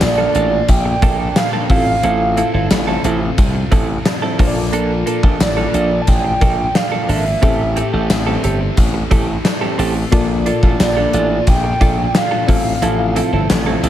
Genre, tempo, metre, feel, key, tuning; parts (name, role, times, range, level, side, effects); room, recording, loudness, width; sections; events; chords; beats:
1980s-style pop; 89 BPM; 4/4; straight; A4 = 440 Hz
hollow clarinet-like synth lead; melody; 0.0-13.5 s; D5 to A5; -20 LUFS; right 2 dB; chorus, digital delay
FM electric piano with tremolo; accompaniment; 0.0-13.9 s; A2 to F5; -23 LUFS; left 5 dB
thick fuzz guitar; accompaniment; 0.0-13.9 s; F2 to Bb3; -27 LUFS; equal; distortion, lush chorus
direct-recorded clean electric guitar; riff; 0.0-13.9 s; Bb3 to A4; -22 LUFS; right 6 dB; wide subtle chorus, digital delay
slap bass; bass; 0.0-13.9 s; G1 to C2; -19 LUFS; equal
gated 80s drum kit; drums; 0.0-13.9 s; hi-hat, kick drum, snare drum, tambourine; -16 LUFS; equal
light reverb; -13 LUFS; side -12 dB against mid
0.0-13.9 A section
0.0 Bbmaj7; 1.7 Fmaj7; 4.4 Bbmaj7; 7.4 Am7; 10.1 Bbmaj7; 12.5 Fmaj7
0.01 0.69 1.36 | 2.03 2.71 3.38 4.06 | 4.73 5.41 6.08 6.75 | 7.43 8.10 8.78 9.45 | 10.12 10.80 11.47 12.15 | 12.82 13.49